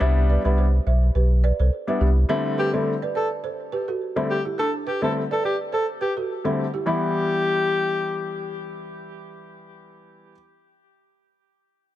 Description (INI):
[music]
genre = afrobeats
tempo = 105 BPM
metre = 4/4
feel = swing 55% on 16ths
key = unclear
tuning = A4 = 441 Hz
[part]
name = warm baby grand piano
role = accompaniment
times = 0.0-10.3 s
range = D3 to E4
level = -26 LUFS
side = left 2 dB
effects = none
[part]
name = balafon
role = riff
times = 0.0-8.5 s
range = D4 to E5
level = -29 LUFS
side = right 5 dB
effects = ping-pong delay
[part]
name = warm sub bass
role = bass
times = 0.0-2.2 s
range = B1 to C2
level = -18 LUFS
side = equal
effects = none
[part]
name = breathy alto saxophone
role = melody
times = 2.6-8.5 s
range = G4 to A4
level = -25 LUFS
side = left 1 dB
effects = ping-pong delay
[sound]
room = small room ambience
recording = none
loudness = -20 LUFS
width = side -13 dB against mid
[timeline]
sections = 0.0-2.3 A section; 2.3-6.9 B section; 6.9-9.1 C section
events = none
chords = 0.0 Cmaj7; 2.3 D7sus4; 6.9 Em